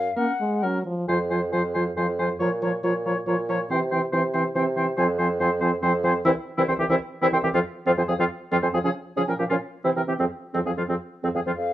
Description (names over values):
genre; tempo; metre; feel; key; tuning
quick classical-period movement for wind quintet; 138 BPM; 3/4; rubato; F minor; A4 = 440 Hz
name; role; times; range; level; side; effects
concert flute; melody; 0.0-11.7 s; Ab4 to Bb5; -29 LUFS; left 5 dB; none
dark bassoon; bass; 0.0-11.7 s; C2 to Db3; -27 LUFS; right 2 dB; none
warm oboe; second line; 0.2-11.5 s; C4 to Db5; -27 LUFS; left 2 dB; none
dark clarinet; accompaniment; 0.2-11.5 s; C4 to F4; -29 LUFS; right 6 dB; none
warm French horn; accompaniment; 0.2-11.5 s; E3 to A#3; -27 LUFS; equal; none
room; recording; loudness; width
light reverb; worn, warbling old tape, cassette tape, warbly pitch drift; -22 LUFS; side -13 dB against mid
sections
0.0-1.1 A section; 1.1-11.6 B section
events
none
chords
0.0 F#; 1.1 Fm; 2.4 Bbm; 3.7 C; 5.0 Fm; 6.3 C; 7.5 F5; 8.8 Db; 9.3 Gm7b5/Bb (rootless); 9.7 C; 10.2 F5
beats
0.16 0.63 | 1.08 1.52 1.96 | 2.40 2.83 3.27 | 3.70 4.12 4.55 | 4.98 5.40 5.83 | 6.26 6.69 7.12 | 7.54 7.97 8.41 | 8.84 9.28 9.73 | 10.19 10.66 11.12 | 11.57